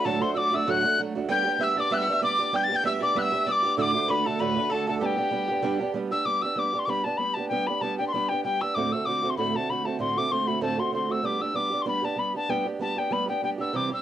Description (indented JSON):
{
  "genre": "celtic folk, Celtic reel",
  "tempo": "193 BPM",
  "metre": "4/4",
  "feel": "swing 55% on 8ths",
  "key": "G major",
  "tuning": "A4 = 440 Hz",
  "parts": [
    { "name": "mellow tin whistle", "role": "melody", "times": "0.0-14.0 s", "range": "G5 to A6", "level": "-26 LUFS", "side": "left 3 dB", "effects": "cassette tape" },
    { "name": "bright fiddle", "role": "second line", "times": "0.0-5.9 s", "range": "G4 to G5", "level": "-38 LUFS", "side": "left 7 dB", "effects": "cassette tape" },
    { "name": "mandolin", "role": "second line", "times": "0.0-5.9 s", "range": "G4 to G5", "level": "-31 LUFS", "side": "right 4 dB", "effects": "cassette tape" },
    { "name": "fingerpicked old ladder-braced acoustic guitar", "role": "accompaniment", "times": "0.0-14.0 s", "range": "D2 to G4", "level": "-28 LUFS", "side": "right 5 dB", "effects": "cassette tape" }
  ],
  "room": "moderate studio reverb, RT60 0.5 s",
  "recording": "home recording on cassette",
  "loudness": "-23 LUFS",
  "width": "side -11 dB against mid",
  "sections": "0.0-6.3 A section; 6.3-14.0 B section",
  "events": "none",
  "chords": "0.0 D; 1.3 G; 3.8 D; 5.0 G; 8.7 D7; 11.2 G",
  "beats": "| 0.05 0.36 0.67 0.98 | 1.29 1.60 1.91 2.22 | 2.54 2.85 3.15 3.46 | 3.77 4.09 4.40 4.71 | 5.02 5.33 5.64 5.95 | 6.26 6.57 6.88 7.19 | 7.50 7.81 8.12 8.44 | 8.75 9.06 9.37 9.68 | 9.99 10.31 10.62 10.93 | 11.24 11.55 11.86 12.18 | 12.49 12.80 13.11 13.42 | 13.73"
}